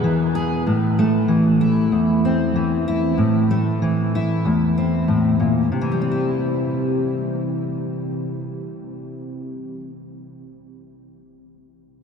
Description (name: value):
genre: folk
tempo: 95 BPM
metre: 4/4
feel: straight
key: C major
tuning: A4 = 440 Hz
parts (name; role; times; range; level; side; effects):
- fingerpicked steel-string acoustic guitar; accompaniment; 0.0-9.9 s; E2 to G#4; -18 LUFS; left 1 dB; analog chorus
room: wet huge ambient reverb, RT60 7.1 s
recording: dreamy mix soaked in reverb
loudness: -17 LUFS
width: side -6 dB against mid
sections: 0.0-5.7 A section; 5.7-8.2 B section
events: none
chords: 0.0 E; 0.7 Am; 5.7 C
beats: 0.03 | 0.66 1.29 1.92 2.55 | 3.18 3.81 4.45 5.08 | 5.71 6.34 6.98 7.61